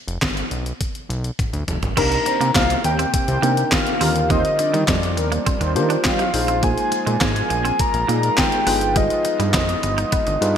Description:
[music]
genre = early-eighties boogie funk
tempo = 103 BPM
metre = 4/4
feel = straight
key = C minor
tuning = A4 = 443 Hz
[part]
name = fat analog bass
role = bass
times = 0.1-10.6 s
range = F1 to Eb3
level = -23 LUFS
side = equal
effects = none
[part]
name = detuned 8-bit digital drum machine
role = drums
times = 0.1-10.6 s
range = crash cymbal, handclaps, hi-hat, kick drum, snare drum, toms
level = -22 LUFS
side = equal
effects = gated reverb
[part]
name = soft octave-layered synth lead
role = melody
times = 2.0-10.6 s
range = D5 to Bb5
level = -22 LUFS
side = left 1 dB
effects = chorus, digital delay
[part]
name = mellow synth brass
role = second line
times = 2.0-6.3 s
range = G3 to D5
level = -27 LUFS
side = equal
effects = chorus
[part]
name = tine electric piano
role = accompaniment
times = 2.0-10.6 s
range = D3 to C5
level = -25 LUFS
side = left 2 dB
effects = medium stereo tremolo
[part]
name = chorused pulse-width pad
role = sustained chords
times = 2.0-10.6 s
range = C3 to F4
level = -30 LUFS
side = equal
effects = none
[part]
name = twangy electric guitar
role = riff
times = 2.0-10.3 s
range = G3 to Eb4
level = -28 LUFS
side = right 8 dB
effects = wide subtle chorus
[sound]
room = moderate lush hall reverb, RT60 1.8 s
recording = bright 1980s-style digital production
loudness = -17 LUFS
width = side -8 dB against mid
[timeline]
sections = 0.0-2.0 A section; 2.0-10.6 B section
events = drum fill 1.4-2.0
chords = 0.0 G7; 2.0 Cm9; 4.0 Ebmaj9; 6.3 Bb7sus4; 8.7 G7b9b13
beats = 0.22 0.81 1.39 | 1.97 2.55 3.13 3.72 | 4.30 4.88 5.46 6.05 | 6.63 7.21 7.79 8.38 | 8.96 9.54 10.12

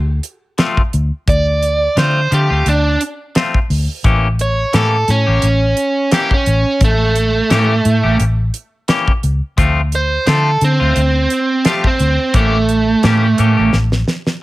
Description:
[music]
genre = straight-eighth soul blues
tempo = 87 BPM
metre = 4/4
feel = swing 55% on 16ths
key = unclear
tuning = A4 = 440 Hz
[part]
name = vintage muted fingered electric bass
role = bass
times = 0.0-14.0 s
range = A1 to D3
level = -15 LUFS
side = equal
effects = none
[part]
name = damped 70s drum kit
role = drums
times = 0.2-14.4 s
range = hi-hat, kick drum, snare drum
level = -16 LUFS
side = equal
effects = none
[part]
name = clean electric guitar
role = stabs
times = 0.6-13.8 s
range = E3 to G4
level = -19 LUFS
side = left 4 dB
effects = none
[part]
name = biting overdriven guitar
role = melody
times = 1.3-13.7 s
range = A3 to D5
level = -15 LUFS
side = right 2 dB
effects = spring reverb
[sound]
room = light reverb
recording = none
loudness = -12 LUFS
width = side -18 dB against mid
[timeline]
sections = 0.0-14.4 A section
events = overdriven electric guitar solo 0.0-14.4; drum fill 13.7-14.4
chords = 0.0 Dm7; 4.0 A7b9; 9.6 Dm7; 12.3 A7b9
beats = 0.59 | 1.28 1.97 2.66 3.35 | 4.05 4.74 5.43 6.12 | 6.81 7.51 8.20 8.89 | 9.58 10.27 10.96 11.65 | 12.35 13.04 13.73

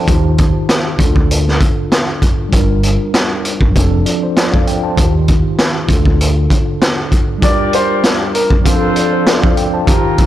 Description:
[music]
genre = hip hop, boom-bap hip-hop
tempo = 98 BPM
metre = 4/4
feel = swing 56% on 16ths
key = G minor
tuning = A4 = 441 Hz
[part]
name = mellow tine electric piano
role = accompaniment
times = 0.0-10.3 s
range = D3 to A5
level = -18 LUFS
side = equal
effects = medium stereo tremolo, high-pass filter, low-pass filter
[part]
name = deep dub fingered electric bass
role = bass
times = 0.1-6.5 s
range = F1 to Eb2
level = -16 LUFS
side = equal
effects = none
[part]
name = raw garage drum kit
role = drums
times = 0.1-10.3 s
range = hi-hat, kick drum, snare drum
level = -13 LUFS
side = equal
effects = none
[part]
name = warm upright piano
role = melody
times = 7.4-8.5 s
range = Bb4 to D5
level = -18 LUFS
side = equal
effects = high-pass filter, low-pass filter, ping-pong delay
[part]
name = warm horn section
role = stabs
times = 7.4-10.3 s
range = F4 to D5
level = -18 LUFS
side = left 2 dB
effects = high-pass filter, low-pass filter, ping-pong delay
[sound]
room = little or no reverb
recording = blown-out, overdriven recording, overdrive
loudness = -11 LUFS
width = side -13 dB against mid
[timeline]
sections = 0.0-7.4 A section; 7.4-10.3 B section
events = none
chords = 0.1 Ebadd9; 1.0 Dm; 2.5 Gm7; 3.8 F6; 5.0 Ebadd9; 5.9 Dm; 7.4 Gm7; 8.6 F6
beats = | 0.08 0.69 1.30 1.91 | 2.53 3.14 3.75 4.36 | 4.98 5.59 6.20 6.81 | 7.42 8.04 8.65 9.26 | 9.87

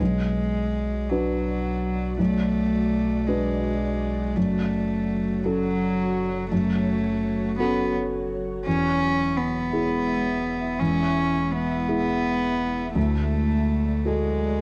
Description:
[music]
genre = neoclassical piano and strings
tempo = 56 BPM (dotted quarters)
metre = 6/8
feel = rubato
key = B dorian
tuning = A4 = 441 Hz
[part]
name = clear cello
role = second line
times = 0.0-14.6 s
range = F#3 to C#4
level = -27 LUFS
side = equal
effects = cassette tape
[part]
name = dark grand piano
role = accompaniment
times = 0.0-14.6 s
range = B1 to B4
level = -29 LUFS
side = equal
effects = cassette tape
[part]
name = ethereal airy pad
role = sustained chords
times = 0.9-14.6 s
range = F#3 to E5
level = -36 LUFS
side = equal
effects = ensemble chorus, built-in reverb, cassette tape
[part]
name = punchy sub bass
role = bass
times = 0.0-14.6 s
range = E1 to D2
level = -34 LUFS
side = equal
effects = none
[sound]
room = light reverb, studio ambience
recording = home recording on cassette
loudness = -24 LUFS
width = mono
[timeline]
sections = 0.0-14.6 A section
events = none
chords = 0.0 Bm; 4.4 F#m; 8.7 E; 13.0 D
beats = | 0.00 1.10 | 2.19 3.28 | 4.37 5.44 | 6.51 7.59 | 8.66 9.73 | 10.80 11.88 | 12.96 14.06

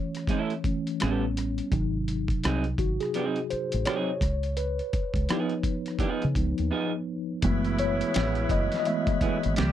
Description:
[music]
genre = R&B, neo-soul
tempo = 84 BPM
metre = 4/4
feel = swing 61% on 16ths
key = F# dorian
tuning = A4 = 440 Hz
[part]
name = mellow tine electric piano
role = accompaniment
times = 0.0-9.7 s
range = B#2 to E5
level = -29 LUFS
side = left 1 dB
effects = medium stereo tremolo
[part]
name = boom bap sampler-style drum kit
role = drums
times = 0.1-9.7 s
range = hi-hat, kick drum, rim click, snare drum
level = -30 LUFS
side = equal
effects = none
[part]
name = electric guitar through a small old amp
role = second line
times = 0.3-9.4 s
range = E#3 to A4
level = -29 LUFS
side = right 4 dB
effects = none
[part]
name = deep dub fingered electric bass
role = bass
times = 1.0-9.7 s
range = F#1 to C#3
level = -28 LUFS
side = equal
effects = none
[part]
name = tonewheel organ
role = sustained chords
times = 7.4-9.7 s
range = F#3 to E5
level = -37 LUFS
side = equal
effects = fast rotary speaker, overdrive
[part]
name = warm saxophone section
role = stabs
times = 7.4-9.7 s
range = C#3 to G4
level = -34 LUFS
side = right 4 dB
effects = none
[sound]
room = little or no reverb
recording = dry, close 1970s-style studio recording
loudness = -25 LUFS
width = side -11 dB against mid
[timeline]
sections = 0.0-7.4 A section; 7.4-9.7 B section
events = tine electric piano solo 0.0-7.4, 7.4-9.7; break 6.7-7.4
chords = 0.0 B9sus4 (rootless); 1.0 A9; 1.7 G#7; 4.2 C#9; 7.4 F#m11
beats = 0.28 1.00 | 1.71 2.42 3.14 3.85 | 4.57 5.28 6.00 6.71 | 7.42 8.14 8.85 9.57

